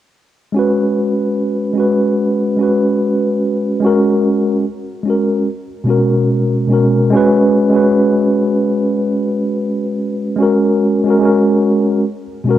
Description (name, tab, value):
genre	hip hop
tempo	73 BPM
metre	4/4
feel	swing 56% on 16ths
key	unclear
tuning	A4 = 440 Hz
part	mellow tine electric piano	solo	0.5-12.6 s	B2 to B4	-12 LUFS	equal	medium stereo tremolo, cassette tape, low-pass filter
room	light reverb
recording	rough home demo mix, cassette tape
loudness	-12 LUFS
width	side -12 dB against mid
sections	0.5-7.1 A section; 7.1-12.6 B section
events	none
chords	0.5 C#5; 3.8 F#; 5.5 Bsus2; 7.1 C#5; 10.4 F#; 12.0 Bsus2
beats	| 0.53 1.35 2.17 3.00 | 3.82 4.64 5.46 6.28 | 7.11 7.93 8.75 9.57 | 10.39 11.21 12.04